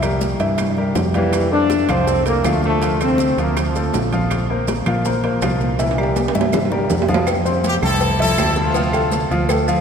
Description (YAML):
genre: latin, salsa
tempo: 162 BPM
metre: 4/4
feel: straight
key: F major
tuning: A4 = 441 Hz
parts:
  - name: clear upright piano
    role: accompaniment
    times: 0.0-9.8 s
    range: E3 to C6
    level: -21 LUFS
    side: left 1 dB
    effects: none
  - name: fingered electric bass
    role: bass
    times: 0.0-9.8 s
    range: Bb1 to Bb2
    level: -21 LUFS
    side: equal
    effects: none
  - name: bongos and cowbell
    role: percussion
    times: 0.0-9.7 s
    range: none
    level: -28 LUFS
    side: left 3 dB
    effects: none
  - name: claves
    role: percussion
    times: 0.0-9.7 s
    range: none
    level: -36 LUFS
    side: right 4 dB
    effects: none
  - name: congas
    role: percussion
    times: 0.0-9.8 s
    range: none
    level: -28 LUFS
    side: left 1 dB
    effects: none
  - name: maracas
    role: percussion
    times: 0.0-9.8 s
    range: none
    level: -35 LUFS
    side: right 8 dB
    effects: none
  - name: timbales and agogo bells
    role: percussion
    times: 0.0-9.7 s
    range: none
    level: -26 LUFS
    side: right 5 dB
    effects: none
  - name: bright trombone section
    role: melody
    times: 1.2-4.1 s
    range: E3 to D4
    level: -20 LUFS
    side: left 1 dB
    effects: none
  - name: brilliant horn section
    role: melody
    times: 7.7-9.3 s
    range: A3 to A4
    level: -22 LUFS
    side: left 1 dB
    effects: none
room: wet cathedral reverb, RT60 5.3 s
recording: recorded in a church or concert hall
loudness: -15 LUFS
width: side -7 dB against mid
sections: 0.0-7.3 A section; 7.3-9.8 B section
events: drum fill 5.8-7.3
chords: 0.0 C7; 1.3 F; 2.8 Dm7; 4.3 Bbsus2; 5.8 C7; 7.3 Fmaj7; 8.8 Dm7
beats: 0.21 0.59 0.96 | 1.33 1.70 2.08 2.45 | 2.82 3.19 3.56 3.94 | 4.31 4.68 5.05 5.42 | 5.79 6.16 6.53 6.91 | 7.28 7.64 8.02 8.39 | 8.76 9.13 9.50